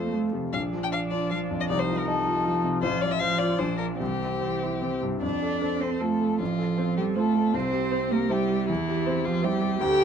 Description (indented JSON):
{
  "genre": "quick classical-period movement for piano quartet",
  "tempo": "156 BPM",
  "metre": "3/4",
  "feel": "rubato",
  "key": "F major",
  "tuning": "A4 = 436 Hz",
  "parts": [
    { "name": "rich violin", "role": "melody", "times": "0.0-10.0 s", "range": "E4 to G5", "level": "-30 LUFS", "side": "left 7 dB", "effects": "none" },
    { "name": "rich cello", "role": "second line", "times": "0.0-10.0 s", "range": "C3 to G4", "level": "-27 LUFS", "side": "right 6 dB", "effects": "none" },
    { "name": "bright grand piano", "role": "accompaniment", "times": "0.0-10.0 s", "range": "A1 to Eb5", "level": "-29 LUFS", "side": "left 3 dB", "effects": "none" },
    { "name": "rich viola", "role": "accompaniment", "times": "0.0-10.0 s", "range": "A3 to C5", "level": "-34 LUFS", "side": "right 3 dB", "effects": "none" }
  ],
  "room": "moderate studio reverb, RT60 0.8 s",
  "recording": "dark, warm production",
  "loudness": "-24 LUFS",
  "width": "side -7 dB against mid",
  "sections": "0.0-5.2 A section; 5.2-10.0 B section",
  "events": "none",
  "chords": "0.0 F; 0.5 Bb; 1.7 F7/C; 2.8 F/A; 3.6 Bb; 4.0 C; 5.2 F; 6.4 F/A; 7.5 C; 8.7 C/E",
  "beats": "0.14 | 0.53 0.93 1.31 | 1.69 2.08 2.45 | 2.83 3.21 3.59 | 4.00 4.41 4.82 | 5.23 5.62 6.01 | 6.40 6.78 7.16 | 7.54 7.92 8.31 | 8.69 9.07 9.44 | 9.81"
}